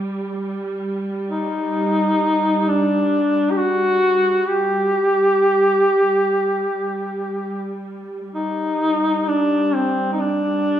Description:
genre	caucasian folk, Caucasian lament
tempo	free time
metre	none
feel	none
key	unclear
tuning	A4 = 441 Hz
part	muted studio string section	drone	0.0-10.8 s	G3	-26 LUFS	right 2 dB	none
part	warm duduk	melody	1.3-10.8 s	C4 to G4	-17 LUFS	equal	none
room	wet recital hall reverb, RT60 1.7 s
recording	recorded in a church or concert hall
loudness	-17 LUFS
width	side -10 dB against mid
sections	0.0-8.3 A section; 8.3-10.8 B section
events	none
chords	none

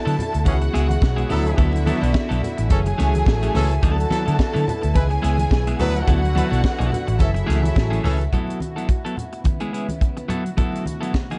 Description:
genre	disco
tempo	107 BPM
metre	4/4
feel	swing 56% on 16ths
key	unclear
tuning	A4 = 440 Hz
part	rich symphonic violin section	second line	0.0-8.3 s	E4 to A5	-30 LUFS	equal	none
part	rich symphonic string section	sustained chords	0.0-11.4 s	D2 to A4	-32 LUFS	equal	none
part	electric guitar at the edge of break-up	accompaniment	0.1-11.4 s	E3 to A4	-29 LUFS	equal	none
part	vintage muted picked electric bass	bass	0.1-8.3 s	F#1 to D3	-23 LUFS	equal	none
part	tight funk drum kit	drums	0.1-11.4 s	hi-hat, kick drum, snare drum	-23 LUFS	equal	none
part	congas	percussion	0.2-11.4 s	none	-31 LUFS	equal	none
part	warm horn section	stabs	0.5-8.2 s	E3 to B4	-30 LUFS	equal	none
room	little or no reverb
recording	dark, warm production, nothing above 10.3 kHz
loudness	-20 LUFS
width	mono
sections	0.0-8.3 A section; 8.3-11.4 B section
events	none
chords	0.5 C#m7; 1.3 D69; 2.7 F#m9; 3.8 D69; 4.9 C#m7; 5.8 D69; 7.2 F#m9; 8.3 D69; 9.5 C#m7; 10.3 D69

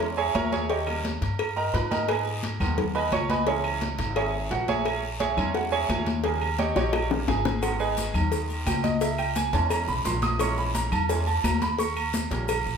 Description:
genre	latin, salsa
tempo	173 BPM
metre	4/4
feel	straight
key	G# harmonic minor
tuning	A4 = 442 Hz
part	bright concert grand piano	accompaniment	0.0-12.5 s	C#3 to D#6	-28 LUFS	right 4 dB	none
part	upright bass	bass	0.0-12.8 s	G#1 to G#2	-30 LUFS	left 1 dB	none
part	congas	percussion	0.0-12.8 s	none	-32 LUFS	left 4 dB	none
part	cowbell and bongos	percussion	0.0-12.7 s	none	-32 LUFS	left 4 dB	none
part	guiro	percussion	0.0-12.8 s	none	-41 LUFS	left 5 dB	none
part	agogo bells and timbales	percussion	0.2-12.7 s	none	-33 LUFS	right 7 dB	none
part	claves	percussion	0.3-12.7 s	none	-41 LUFS	left 3 dB	none
part	maracas	percussion	7.6-12.8 s	none	-40 LUFS	left 5 dB	none
room	wet large studio reverb, RT60 0.9 s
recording	band playing live in one room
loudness	-23 LUFS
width	side -6 dB against mid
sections	0.0-12.8 A section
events	grand piano solo 0.0-12.8; drum fill 6.8-7.6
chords	0.0 A#m7b5; 0.7 D#7; 2.1 G#m; 3.5 C#m; 4.9 A#m7b5; 6.2 D#7; 7.6 G#m; 9.0 C#m; 10.4 A#m7b5; 11.8 D#7

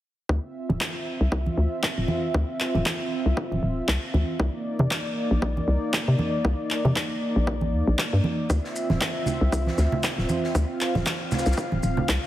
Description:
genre	deep house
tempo	117 BPM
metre	4/4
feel	swing 57% on 16ths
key	unclear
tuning	A4 = 438 Hz
part	warm analog pad	sustained chords	0.3-12.3 s	Bb3 to F5	-29 LUFS	equal	chorus, sidechain pumping
part	hollow knocking FM bass	bass	0.3-12.2 s	D1 to C3	-23 LUFS	equal	sidechain pumping
part	electronic kick drum	drums	0.3-12.2 s	none	-30 LUFS	equal	high-pass filter on kick, high-pass filter on room
part	congas	percussion	0.7-12.1 s	none	-30 LUFS	right 2 dB	none
part	electronic handclaps	drums	0.8-12.2 s	none	-29 LUFS	equal	none
part	shaker and snare drum	drums	8.5-12.3 s	none	-36 LUFS	left 1 dB	high-pass filter on snare, high-pass filter on perc, high-pass filter on room
room	light reverb, small room ambience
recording	heavily compressed radio sound, multiband compression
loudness	-22 LUFS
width	side -14 dB against mid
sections	0.3-12.3 A section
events	none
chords	0.3 Dm9; 4.4 Cm9; 8.5 Dm9

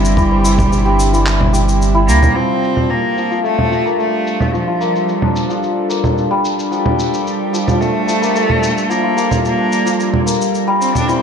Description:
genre	organic downtempo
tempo	110 BPM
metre	4/4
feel	straight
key	G dorian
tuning	A4 = 441 Hz
part	rich cello	melody	0.0-11.2 s	F3 to D4	-19 LUFS	right 1 dB	tape echo
part	bowed-like drone	sustained chords	0.0-11.2 s	C3 to A4	-20 LUFS	right 2 dB	built-in reverb, sidechain pumping
part	santur	arpeggios	0.0-11.2 s	E3 to C5	-18 LUFS	left 2 dB	low-pass filter, digital delay
part	warm sub bass	bass	0.0-2.3 s	G1 to D2	-14 LUFS	equal	none
part	electronic shaker, congas and handclaps	drums	0.1-11.2 s	none	-20 LUFS	right 2 dB	low-pass filter on perc, low-pass filter on snare, low-pass filter on room
part	electronic kick drum	drums	0.2-0.7 s	none	-17 LUFS	equal	none
room	light reverb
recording	none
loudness	-13 LUFS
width	side -7 dB against mid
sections	0.0-2.4 A section; 2.4-11.2 B section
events	filter sweep on drum 2.4-11.2; filter sweep on santur 2.4-11.2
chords	0.0 C/G; 2.4 Gm9

